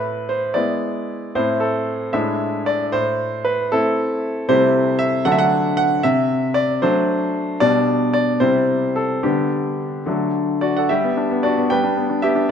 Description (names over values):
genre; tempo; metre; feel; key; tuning
classical-period piano sonatina; 76 BPM (dotted quarters); 6/8; rubato; A minor, G major from 4.5 s; A4 = 440 Hz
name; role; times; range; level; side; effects
bright concert grand piano; solo; 0.0-12.5 s; A2 to G5; -17 LUFS; equal; none
room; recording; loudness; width
moderate recital hall reverb, RT60 1.8 s; close, detailed microphones; -17 LUFS; side -7 dB against mid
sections
0.0-10.9 A section; 10.9-12.5 B section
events
none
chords
0.0 E7/A; 1.3 Am; 2.1 E7/A; 2.9 Am; 4.5 Am7/C; 5.3 D; 6.0 D7/C; 7.6 G/B; 8.4 C; 9.2 G/D; 10.1 D; 10.9 G